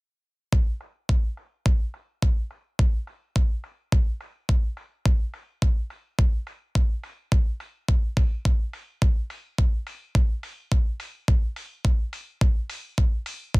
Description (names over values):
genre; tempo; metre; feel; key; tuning
nu-disco, nu disco; 106 BPM; 4/4; straight; none; none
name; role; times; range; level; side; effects
electronic kick drum; drums; 0.5-13.6 s; none; -20 LUFS; equal; none
electronic hi-hat; drums; 0.8-13.4 s; none; -40 LUFS; equal; low-pass filter on hats
room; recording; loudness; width
little or no reverb; dense, heavily limited modern master; -23 LUFS; side -26 dB against mid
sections
0.5-13.6 A section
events
filter sweep on drum 0.5-13.6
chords
none